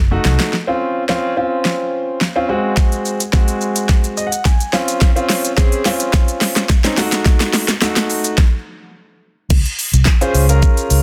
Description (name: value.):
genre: dance-pop.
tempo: 107 BPM.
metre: 4/4.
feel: straight.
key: Db major.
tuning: A4 = 437 Hz.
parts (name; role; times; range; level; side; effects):
vintage muted fingered electric bass; bass; 0.0-0.4, 9.5-11.0 s; Gb1 to Db2; -16 LUFS; equal; sidechain pumping.
warm baby grand piano; accompaniment; 0.1-11.0 s; Ab3 to Ab5; -21 LUFS; equal; sidechain pumping.
pop drum kit; drums; 0.2-11.0 s; crash cymbal, handclaps, hi-hat, kick drum, shaker, snare drum; -17 LUFS; equal; soft clipping on snare.
room: light reverb.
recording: dense, heavily limited modern master.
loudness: -16 LUFS.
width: mono.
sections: 0.5-9.5 A section; 9.5-11.0 B section.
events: drum fill 0.0-0.5, 0.5-8.4; build-up 0.5-9.5; grand piano fill 3.9-5.0; stop 8.4-9.5; drop 9.5-11.0.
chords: 0.0 Gbm6; 0.5 Dbmaj7; 2.5 Ab7; 4.7 Dbmaj7; 7.0 Gbm6; 9.5 Dbmaj7.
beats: | 0.53 1.09 1.65 2.21 | 2.77 3.33 3.90 4.46 | 5.02 5.58 6.14 6.70 | 7.26 7.82 8.38 8.94 | 9.50 10.06 10.62.